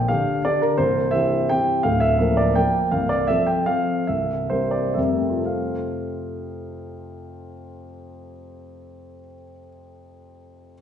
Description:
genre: classical, piano waltz.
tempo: 112-177 BPM.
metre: 3/4.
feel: rubato.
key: F major.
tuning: A4 = 440 Hz.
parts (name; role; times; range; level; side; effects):
warm grand piano; solo; 0.0-10.8 s; C1 to G5; -20 LUFS; equal; none.
room: wet recital hall reverb, RT60 1.6 s.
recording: heard from further back in the room, nothing above 10.8 kHz.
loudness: -19 LUFS.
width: side -8 dB against mid.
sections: 0.0-5.5 A section; 5.5-8.6 B section.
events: slowing down 2.4-5.5.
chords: 0.0 Gm/Bb; 0.8 C; 1.8 Bb/D; 2.9 F/C; 4.1 C7; 5.5 F.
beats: 0.08 0.44 | 0.79 1.14 1.50 | 1.85 2.19 2.56 | 2.91 3.28 3.67 | 4.07 4.50 4.96 | 5.48 5.98 6.51 | 7.02 7.52 8.05.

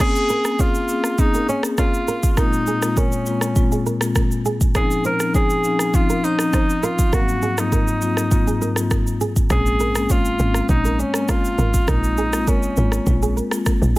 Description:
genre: afrobeats.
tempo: 101 BPM.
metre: 4/4.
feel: straight.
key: Bb minor.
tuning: A4 = 442 Hz.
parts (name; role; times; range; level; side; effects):
warm alto saxophone; melody; 0.0-13.4 s; Db4 to Bb4; -23 LUFS; right 1 dB; none.
marimba with medium mallets; accompaniment; 0.0-13.7 s; Ab2 to F5; -22 LUFS; left 3 dB; none.
nylon-string guitar; riff; 0.0-14.0 s; Ab4 to Db5; -28 LUFS; right 4 dB; tape echo.
afro-pop drum kit; drums; 0.0-14.0 s; crash cymbal, kick drum, rim click, shaker; -20 LUFS; equal; none.
woody log drum bass; bass; 9.5-14.0 s; Ab1 to Bb1; -21 LUFS; equal; none.
room: small room ambience.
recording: none.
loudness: -17 LUFS.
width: side -19 dB against mid.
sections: 0.0-14.0 A section.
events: none.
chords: 0.0 Bbm9; 2.4 Bbm11; 4.8 Dbmaj9; 7.1 Ab13; 9.5 Bbm9; 11.9 Ab69.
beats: | 0.00 0.59 1.19 1.78 | 2.38 2.97 3.56 4.16 | 4.75 5.34 5.94 6.53 | 7.13 7.72 8.32 8.91 | 9.50 10.10 10.69 11.29 | 11.88 12.47 13.07 13.66.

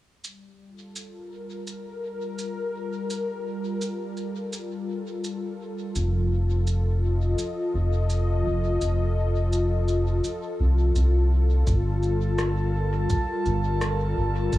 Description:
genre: ambient dub.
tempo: 84 BPM.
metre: 4/4.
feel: swing 55% on 16ths.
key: G minor.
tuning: A4 = 442 Hz.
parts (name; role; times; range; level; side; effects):
warm analog pad; sustained chords; 0.2-14.6 s; F3 to Eb5; -29 LUFS; left 1 dB; chorus.
electronic shaker and rim click; drums; 0.2-14.6 s; none; -36 LUFS; equal; dub echo.
round analog bass; bass; 6.0-14.6 s; F1 to C2; -22 LUFS; equal; none.
electronic kick drum; drums; 11.7-14.6 s; none; -25 LUFS; equal; none.
drifting glass-harmonics texture; texture; 12.0-14.6 s; A5; -34 LUFS; right 5 dB; chorus, built-in reverb.
room: light reverb.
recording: echo-heavy mix, small room ambience.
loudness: -23 LUFS.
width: side -16 dB against mid.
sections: 0.2-11.7 A section; 11.7-14.6 B section.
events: none.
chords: 0.2 Gm9; 6.0 F7; 11.7 Gm9.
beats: | 0.24 0.96 1.67 2.39 | 3.10 3.81 4.53 5.24 | 5.96 6.67 7.39 8.10 | 8.81 9.53 10.24 10.96 | 11.67 12.39 13.10 13.81 | 14.53.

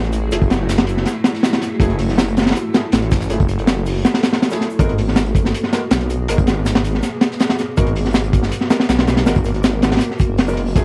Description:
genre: drum and bass, jungle.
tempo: 161 BPM.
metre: 4/4.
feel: straight.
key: unclear.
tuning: A4 = 441 Hz.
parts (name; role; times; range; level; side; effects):
granular cloud pad; sustained chords; 0.0-10.8 s; A3 to A#4; -27 LUFS; equal; built-in reverb, vintage 12-bit sampler grit, cassette tape.
detuned saw bass; bass; 0.0-10.8 s; F#1 to B1; -23 LUFS; equal; tube saturation.
crunchy breakbeat drum kit; drums; 0.0-10.8 s; hi-hat, kick drum, snare drum; -19 LUFS; equal; none.
modern studio drum kit; drums; 0.1-10.8 s; hi-hat, shaker, snare drum; -35 LUFS; equal; high-pass filter on hats, high-pass filter on snare, high-pass filter on perc, high-pass filter on room.
warm baby grand piano; stabs; 0.3-10.8 s; F#3 to A#4; -28 LUFS; equal; vintage 12-bit sampler grit, cassette tape, dub echo.
room: small room ambience.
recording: home recording on cassette.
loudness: -17 LUFS.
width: mono.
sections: 0.0-10.8 A section.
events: none.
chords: 0.0 F#m9; 4.8 G#m9.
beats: | 0.32 0.69 1.07 1.44 | 1.81 2.19 2.56 2.93 | 3.30 3.68 4.05 4.42 | 4.79 5.17 5.54 5.91 | 6.29 6.66 7.03 7.40 | 7.78 8.15 8.52 8.89 | 9.27 9.64 10.01 10.38 | 10.76.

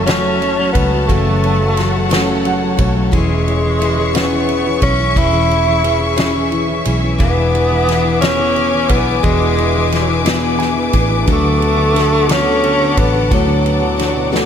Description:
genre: six-eight pop ballad.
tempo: 59 BPM (dotted quarters).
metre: 6/8.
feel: straight.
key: F# minor.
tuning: A4 = 440 Hz.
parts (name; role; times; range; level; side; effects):
warm tenor saxophone; melody; 0.0-14.5 s; F#3 to E4; -17 LUFS; equal; ping-pong delay.
dark upright piano; accompaniment; 0.0-14.5 s; A2 to G#5; -20 LUFS; equal; none.
warm studio string section; sustained chords; 0.0-14.5 s; F#4 to D6; -21 LUFS; left 2 dB; none.
picked steel-string acoustic guitar; arpeggios; 0.0-14.5 s; F#2 to A4; -22 LUFS; left 6 dB; ping-pong delay.
vintage muted fingered electric bass; bass; 0.0-14.5 s; E1 to D2; -19 LUFS; equal; none.
natural country drum kit; drums; 0.1-14.5 s; kick drum, ride cymbal, snare drum; -20 LUFS; equal; none.
room: moderate plate reverb, RT60 3.2 s.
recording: dreamy mix soaked in reverb.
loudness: -12 LUFS.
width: side -8 dB against mid.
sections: 0.0-14.5 A section.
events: upright piano fill 2.1-3.1, 10.3-11.3.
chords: 0.0 F#m7; 3.1 C#m/E; 7.2 E7; 11.3 D6.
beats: 0.07 | 1.09 2.11 | 3.12 4.14 | 5.16 6.18 | 7.20 8.22 | 9.24 10.26 | 11.27 12.29 | 13.31 14.33.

